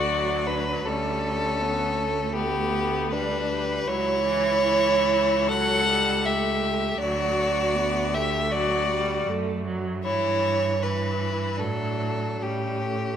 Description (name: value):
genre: classical, slow romantic movement for string quartet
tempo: 78 BPM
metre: 4/4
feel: uneven beats, rubato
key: D major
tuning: A4 = 441 Hz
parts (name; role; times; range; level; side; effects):
- rich violin; melody; 0.0-13.2 s; B3 to A4; -29 LUFS; left 6 dB; none
- rich violin; second line; 0.0-13.2 s; G4 to F#5; -25 LUFS; equal; none
- rich viola; accompaniment; 0.0-13.2 s; E3 to B3; -32 LUFS; right 3 dB; none
- clear cello; bass; 0.0-13.2 s; C#2 to A2; -30 LUFS; right 4 dB; none
room: moderate scoring stage reverb, RT60 2.0 s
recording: none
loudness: -22 LUFS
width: side -9 dB against mid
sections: 0.0-13.2 A section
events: none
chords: 0.0 D; 0.9 G/D; 3.9 A7/C#; 7.0 D; 10.0 Em/G; 11.6 D/A; 12.4 A7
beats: 0.07 | 0.85 1.60 2.34 3.11 | 3.87 4.63 5.48 6.24 | 6.99 7.75 8.51 9.27 | 10.05 10.82 11.59 12.42